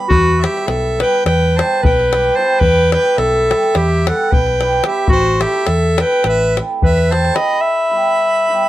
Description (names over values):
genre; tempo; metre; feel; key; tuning
balkan folk, Balkan wedding band; 216 BPM (eighths); 9/8; straight; E minor; A4 = 440 Hz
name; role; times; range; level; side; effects
warm harmonica; second line; 0.0-8.7 s; B4 to B5; -22 LUFS; right 3 dB; none
hammered dulcimer; accompaniment; 0.0-8.7 s; G3 to A4; -22 LUFS; right 5 dB; none
warm clarinet; melody; 0.1-8.7 s; F#4 to E5; -15 LUFS; left 1 dB; none
hollow-body short-scale fingered electric bass; bass; 0.1-7.3 s; A1 to E2; -17 LUFS; equal; none
davul; percussion; 0.1-7.5 s; none; -18 LUFS; left 2 dB; none
room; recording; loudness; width
moderate studio reverb, RT60 0.6 s; none; -12 LUFS; side -14 dB against mid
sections
0.1-8.7 A section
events
none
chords
0.1 Em; 5.1 Am; 7.6 Em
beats
| 0.11 0.38 0.66 0.94 1.22 1.50 1.77 2.05 2.33 | 2.61 2.88 3.16 3.44 3.72 4.00 4.27 4.55 4.83 | 5.11 5.38 5.66 5.94 6.22 6.49 6.77 7.05 7.33 | 7.61 7.88 8.16 8.44